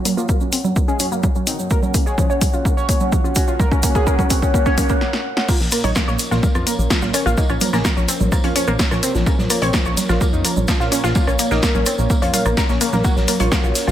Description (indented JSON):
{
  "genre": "melodic techno",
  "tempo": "127 BPM",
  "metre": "4/4",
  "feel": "straight",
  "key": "Bb minor",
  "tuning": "A4 = 442 Hz",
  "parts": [
    { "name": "fat analog lead", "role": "melody", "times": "0.0-13.9 s", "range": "F3 to Db5", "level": "-24 LUFS", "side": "equal", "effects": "phaser, sidechain pumping, dub echo" },
    { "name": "dark analog pad", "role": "sustained chords", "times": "0.0-13.9 s", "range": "F3 to Gb5", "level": "-27 LUFS", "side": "right 1 dB", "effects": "chorus, phaser, sidechain pumping" },
    { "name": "warbly dusty pluck", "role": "arpeggios", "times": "0.1-13.9 s", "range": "F3 to Db6", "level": "-24 LUFS", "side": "equal", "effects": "chorus, sidechain pumping, digital delay" },
    { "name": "punchy analog drum machine", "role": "drums", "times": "0.1-13.9 s", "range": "congas, crash cymbal, hi-hat, rim click, snare drum", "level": "-22 LUFS", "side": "right 1 dB", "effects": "overdrive" },
    { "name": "tube shaker", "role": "percussion", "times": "0.1-13.9 s", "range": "none", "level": "-29 LUFS", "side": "right 4 dB", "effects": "none" },
    { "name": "electronic kick drum", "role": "drums", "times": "0.3-13.6 s", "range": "none", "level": "-18 LUFS", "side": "equal", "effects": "overdrive" },
    { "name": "raw garage drum kit", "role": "drums", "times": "5.5-13.9 s", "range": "hi-hat, snare drum, tambourine", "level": "-30 LUFS", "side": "equal", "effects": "sidechain pumping on hats, high-pass filter on hats, high-pass filter on snare, sidechain pumping on perc, high-pass filter on perc, high-pass filter on room" },
    { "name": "plucky analog bass", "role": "bass", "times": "5.6-13.9 s", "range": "Bb1 to F2", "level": "-21 LUFS", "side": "equal", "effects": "sidechain pumping" }
  ],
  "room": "light reverb, studio ambience",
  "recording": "none",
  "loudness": "-15 LUFS",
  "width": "side -11 dB against mid",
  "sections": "0.0-5.5 A section; 5.5-13.9 B section",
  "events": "build-up 0.0-5.5; drum fill 0.0-5.0, 5.0-5.5; filter sweep on synth arpeggio sound 0.0-5.5; filter sweep on analog synth lead 0.0-5.5; filter sweep on analog synth pad 0.0-5.5; break 5.0-5.5; drop 5.5-13.9",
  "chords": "0.0 Gb; 5.5 Bbm; 13.0 Gb/Bb",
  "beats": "0.29 0.76 1.23 | 1.71 2.18 2.65 3.12 | 3.60 4.07 4.54 5.01 | 5.49 5.96 6.43 6.90 | 7.38 7.85 8.32 8.79 | 9.27 9.74 10.21 10.68 | 11.16 11.63 12.10 12.57 | 13.04 13.52"
}